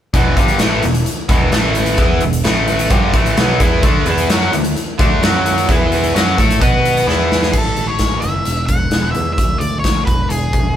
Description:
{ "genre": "classic rock", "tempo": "130 BPM", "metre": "4/4", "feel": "straight", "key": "unclear", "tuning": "A4 = 440 Hz", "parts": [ { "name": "overdriven electric guitar", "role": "riff", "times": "0.1-7.5 s", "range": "E2 to B4", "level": "-15 LUFS", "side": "equal", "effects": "none" }, { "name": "picked electric bass", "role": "bass", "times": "0.1-10.8 s", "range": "E1 to B2", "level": "-20 LUFS", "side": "equal", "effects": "none" }, { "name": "big rock drum kit", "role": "drums", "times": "0.1-10.6 s", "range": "crash cymbal, hi-hat, kick drum, snare drum", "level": "-16 LUFS", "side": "equal", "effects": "none" }, { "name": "octave-fuzz lead guitar", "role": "melody", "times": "7.5-10.8 s", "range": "G#4 to F#5", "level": "-20 LUFS", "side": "left 1 dB", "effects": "distortion" } ], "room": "moderate stone room reverb, RT60 1.0 s", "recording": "band playing live in one room", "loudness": "-12 LUFS", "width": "side -10 dB against mid", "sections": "0.1-7.5 A section; 7.5-10.8 B section", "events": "drum fill 7.1-7.5", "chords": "0.1 E5; 1.5 A5; 2.0 E5; 2.4 A5; 2.9 E5; 3.8 D5; 5.2 F#5; 5.7 E5; 6.1 F#m7; 6.6 B5; 7.1 E5; 7.5 F#m7; 8.5 Esus2; 9.4 Dsus2; 10.1 E" }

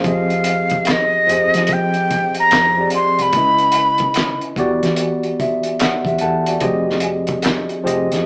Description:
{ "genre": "R&B, neo-soul", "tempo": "73 BPM", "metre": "4/4", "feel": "swing 64% on 16ths", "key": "unclear", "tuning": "A4 = 440 Hz", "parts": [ { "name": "tine electric piano", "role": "accompaniment", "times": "0.0-8.3 s", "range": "Db3 to A5", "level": "-22 LUFS", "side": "equal", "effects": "none" }, { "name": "woody fretless electric bass", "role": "bass", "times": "0.0-8.3 s", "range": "F1 to F3", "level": "-28 LUFS", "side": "equal", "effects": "none" }, { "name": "cloth-damped thuddy drum kit", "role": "drums", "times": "0.0-8.3 s", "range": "handclaps, hi-hat, kick drum, snare drum", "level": "-24 LUFS", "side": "equal", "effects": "none" }, { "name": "jazz flute", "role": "melody", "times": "0.1-4.4 s", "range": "Eb5 to C6", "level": "-17 LUFS", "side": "equal", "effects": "none" } ], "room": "moderate studio reverb, RT60 0.9 s", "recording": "band playing live in one room, small speaker sound", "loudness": "-17 LUFS", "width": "mono", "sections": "0.0-8.3 A section", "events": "tine electric piano fill 5.0-6.6", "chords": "0.0 Fm9; 3.3 Dbm9; 4.6 Em9; 6.6 Fm9" }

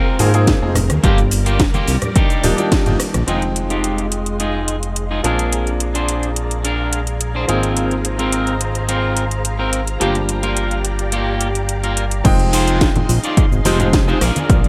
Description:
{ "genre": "nu-disco, nu disco", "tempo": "107 BPM", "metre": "4/4", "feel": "straight", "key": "F dorian", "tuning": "A4 = 440 Hz", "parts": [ { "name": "string machine, full ensemble", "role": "sustained chords", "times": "0.0-14.7 s", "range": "Eb3 to C6", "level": "-29 LUFS", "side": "equal", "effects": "ensemble chorus, sidechain pumping" }, { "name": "electric guitar at the edge of break-up", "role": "riff", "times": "0.0-14.7 s", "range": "Bb3 to D5", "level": "-25 LUFS", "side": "equal", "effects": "subtle chorus, low-pass filter, analog delay" }, { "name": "bright concert grand piano", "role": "accompaniment", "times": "0.2-14.2 s", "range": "F3 to G5", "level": "-25 LUFS", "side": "equal", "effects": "analog delay" }, { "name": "fat analog bass", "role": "bass", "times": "0.2-14.7 s", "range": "Eb1 to Ab2", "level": "-22 LUFS", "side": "equal", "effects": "none" }, { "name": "house drum kit", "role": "drums", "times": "0.2-14.7 s", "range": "crash cymbal, hi-hat, rim click, shaker, snare drum", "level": "-24 LUFS", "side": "equal", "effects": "overdrive" }, { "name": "congas", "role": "percussion", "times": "0.2-3.3, 12.2-14.6 s", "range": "none", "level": "-26 LUFS", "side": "equal", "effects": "none" }, { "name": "electronic kick drum", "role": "drums", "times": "0.5-2.8, 12.2-14.6 s", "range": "none", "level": "-18 LUFS", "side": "equal", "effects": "overdrive" } ], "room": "light reverb", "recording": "none", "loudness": "-17 LUFS", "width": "mono", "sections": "0.0-3.3 A section; 3.3-12.3 B section; 12.3-14.7 C section", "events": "band accent 2.7; filter sweep on string machine 3.3-12.3; drop 12.3-14.7", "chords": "0.0 Ab69; 1.0 Gm7; 2.2 Ebmaj7; 3.3 Fm7; 5.2 Bb7; 7.5 Ab69; 10.0 Gm7; 12.3 Fm7" }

